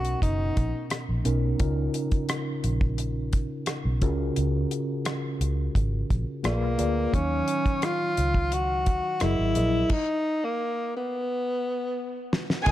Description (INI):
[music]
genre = lush 1970s-style soul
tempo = 87 BPM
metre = 4/4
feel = straight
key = unclear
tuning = A4 = 440 Hz
[part]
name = breathy tenor saxophone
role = melody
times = 0.0-0.9, 6.5-12.3 s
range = Bb3 to Gb4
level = -27 LUFS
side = equal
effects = tape echo
[part]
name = mellow tine electric piano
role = accompaniment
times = 0.0-12.7 s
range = Cb3 to F5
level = -30 LUFS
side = left 1 dB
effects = medium stereo tremolo
[part]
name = vintage muted fingered electric bass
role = bass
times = 0.0-12.7 s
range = Gb1 to Eb2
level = -27 LUFS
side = equal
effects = none
[part]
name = damped 70s drum kit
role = drums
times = 0.0-12.7 s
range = crash cymbal, hi-hat, kick drum, rim click, snare drum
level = -27 LUFS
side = equal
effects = none
[part]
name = rich studio string section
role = second line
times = 12.7 s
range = Ab4 to Ab5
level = -22 LUFS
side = right 1 dB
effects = none
[sound]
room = light reverb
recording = dark, warm production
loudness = -24 LUFS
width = side -14 dB against mid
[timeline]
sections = 0.0-12.7 A section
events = stop 9.9-12.7; drum fill 11.3-12.7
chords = 0.0 Cbmaj7; 1.6 Db69; 4.0 Gbmaj9/Db; 6.4 Bb7b9; 7.1 Ebm7; 9.2 Gb13; 9.9 N.C.